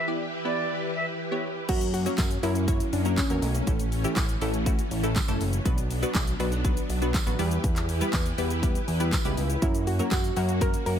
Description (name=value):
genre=dance-pop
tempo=121 BPM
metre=4/4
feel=straight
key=unclear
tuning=A4 = 441 Hz
part: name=silver concert flute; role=melody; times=0.0-1.1 s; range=D5 to E5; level=-31 LUFS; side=right 2 dB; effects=tape echo
part: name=string machine, violas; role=sustained chords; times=0.0-11.0 s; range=E3 to B4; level=-33 LUFS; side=left 1 dB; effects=ensemble chorus, sidechain pumping
part: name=wavetable chord stab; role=accompaniment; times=0.1-10.8 s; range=E3 to D5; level=-32 LUFS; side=left 1 dB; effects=sidechain pumping
part: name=soft round pluck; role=melody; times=1.7-4.1, 9.6-11.0 s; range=A3 to A#4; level=-30 LUFS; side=right 1 dB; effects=chorus, tape echo
part: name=fat analog bass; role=bass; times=1.7-11.0 s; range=F#1 to F#2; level=-28 LUFS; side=equal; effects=sidechain pumping
part: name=pop drum kit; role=drums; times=1.7-11.0 s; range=crash cymbal, handclaps, hi-hat, kick drum, shaker, snare drum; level=-27 LUFS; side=equal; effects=none
part: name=tambourine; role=percussion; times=2.2-10.2 s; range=none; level=-40 LUFS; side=right 6 dB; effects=none
room=little or no reverb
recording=none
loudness=-24 LUFS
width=side -9 dB against mid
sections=0.0-1.7 A section; 1.7-11.0 B section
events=break 0.0-1.7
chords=0.0 Em; 1.7 F#; 3.7 A; 5.7 Bm; 7.4 Em; 9.6 F#